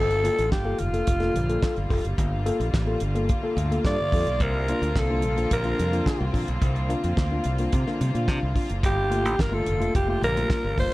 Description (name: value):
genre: disco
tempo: 108 BPM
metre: 4/4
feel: straight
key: unclear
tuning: A4 = 439 Hz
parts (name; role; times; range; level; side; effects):
- growling alto saxophone; melody; 0.0-10.9 s; F4 to D5; -26 LUFS; equal; none
- tine electric piano; accompaniment; 0.0-10.9 s; G2 to A4; -29 LUFS; left 2 dB; none
- rich symphonic string section; sustained chords; 0.0-10.9 s; D3 to F4; -33 LUFS; equal; none
- modern bright fingered electric bass; bass; 0.0-10.9 s; F1 to C3; -27 LUFS; equal; none
- damped 70s drum kit; drums; 0.1-10.9 s; handclaps, hi-hat, kick drum, snare drum; -26 LUFS; equal; none
room: moderate large studio reverb, RT60 1.2 s, small room reverb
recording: dark, warm production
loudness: -22 LUFS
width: side -18 dB against mid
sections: 0.0-10.9 A section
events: none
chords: 0.0 Gm7; 4.4 C9sus4; 8.8 Gm7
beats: 0.52 1.07 1.63 | 2.18 2.74 3.29 3.85 | 4.40 4.95 5.51 6.06 | 6.62 7.17 7.73 8.28 | 8.84 9.39 9.95 10.50